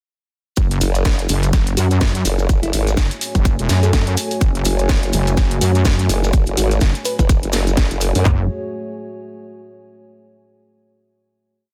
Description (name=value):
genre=bass house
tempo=125 BPM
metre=4/4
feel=swing 58% on 16ths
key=F# minor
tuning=A4 = 440 Hz
part: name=dark analog pad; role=sustained chords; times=0.6-8.5 s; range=A3 to G#5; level=-31 LUFS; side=equal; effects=chorus, sidechain pumping
part: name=wobble bass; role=bass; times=0.6-8.5 s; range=E1 to F#2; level=-20 LUFS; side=equal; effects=chorus, overdrive, sidechain pumping
part: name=garage drum kit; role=drums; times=0.6-8.4 s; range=handclaps, kick drum, toms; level=-18 LUFS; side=equal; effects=none
part: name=garage drum kit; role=drums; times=0.6-8.2 s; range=hi-hat, snare drum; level=-26 LUFS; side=equal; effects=none
part: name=maracas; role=percussion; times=0.6-8.2 s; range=none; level=-32 LUFS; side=equal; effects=none
part: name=formant-sweep wobble bass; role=bass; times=0.8-8.2 s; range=E1 to F#2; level=-20 LUFS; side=equal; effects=chorus, overdrive, sidechain pumping
part: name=bell-like FM electric piano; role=melody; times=1.8-7.3 s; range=E4 to B4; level=-29 LUFS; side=equal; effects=chorus
room=digital ambience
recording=dense, heavily limited modern master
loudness=-17 LUFS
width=mono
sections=0.6-8.3 drop; 8.3-10.2 final chord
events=drop 0.6-8.3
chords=0.6 F#madd9